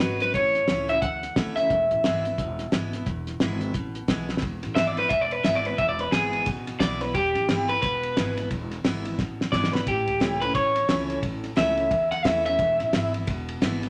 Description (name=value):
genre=rockabilly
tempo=176 BPM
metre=4/4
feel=swing 60% on 8ths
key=E mixolydian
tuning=A4 = 440 Hz
part: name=electric guitar through a small old amp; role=melody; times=0.0-13.1 s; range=G4 to F#5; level=-26 LUFS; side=equal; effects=none
part: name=picked steel-string acoustic guitar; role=accompaniment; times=0.0-13.9 s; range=E2 to F#4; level=-35 LUFS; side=equal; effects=none
part: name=upright bass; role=bass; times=0.0-13.9 s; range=E1 to E2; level=-36 LUFS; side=equal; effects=none
part: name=cloth-damped thuddy drum kit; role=drums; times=0.2-13.9 s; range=hi-hat, kick drum, ride cymbal, snare drum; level=-30 LUFS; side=equal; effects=none
room=moderate large studio reverb, RT60 0.9 s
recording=none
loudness=-25 LUFS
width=mono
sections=0.0-4.4 A section; 4.4-13.9 B section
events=drum fill 4.3, 9.2-9.9; clean electric guitar solo 4.4-13.9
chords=0.3 A; 1.7 E; 9.9 A; 12.6 E